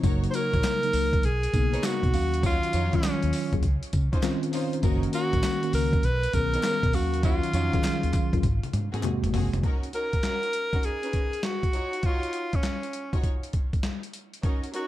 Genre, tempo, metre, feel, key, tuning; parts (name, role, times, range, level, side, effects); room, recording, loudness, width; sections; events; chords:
R&B, new jack swing; 100 BPM; 4/4; swing 67% on 16ths; A4 = 440 Hz
mellow tine electric piano; accompaniment; 0.0-9.7 s; C3 to F5; -30 LUFS; left 1 dB; medium stereo tremolo
warm studio string section; stabs; 0.0-14.9 s; Bb3 to Db5; -37 LUFS; equal
vintage muted fingered electric bass; bass; 0.0-9.6 s; F1 to Db3; -27 LUFS; equal
boom bap sampler-style drum kit; drums; 0.0-14.9 s; handclaps, hi-hat, kick drum, snare drum, tambourine, toms; -27 LUFS; equal
clear tenor saxophone; melody; 0.3-14.9 s; Db4 to C5; -29 LUFS; equal; tape echo
group handclap; percussion; 0.6-9.2 s; -45 LUFS; left 6 dB
light reverb, digital ambience; dark, warm production; -23 LUFS; side -14 dB against mid
0.0-9.6 A section; 9.6-14.9 B section
drum fill 8.4-9.6
0.0 Gb6; 1.2 Cbmaj9; 2.1 Ebm9; 3.6 Dbmaj9; 4.8 Gb6; 6.0 Cbmaj9; 6.9 Ebm9; 8.4 Ab9; 9.6 Gb6; 10.8 Cbmaj9; 11.7 Ebm9; 13.2 N.C.